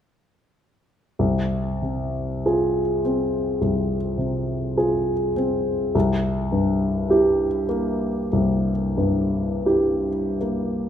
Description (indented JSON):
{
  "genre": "classical, romantic nocturne for solo piano",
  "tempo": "38-54 BPM",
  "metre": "4/4",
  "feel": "rubato",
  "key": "F minor",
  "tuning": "A4 = 440 Hz",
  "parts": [
    { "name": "warm baby grand piano", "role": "solo", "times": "1.2-10.9 s", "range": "C2 to Ab4", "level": "-20 LUFS", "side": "equal", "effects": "none" }
  ],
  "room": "wet recital hall reverb, RT60 1.7 s",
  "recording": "minimal, uncompressed stereo recording",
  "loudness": "-20 LUFS",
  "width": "side -9 dB against mid",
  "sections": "1.2-10.9 A section",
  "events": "none",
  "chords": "1.2 Fm/C; 5.9 C7",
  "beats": "| 1.19 2.45 3.61 4.77 | 5.95 7.10 8.32 9.66"
}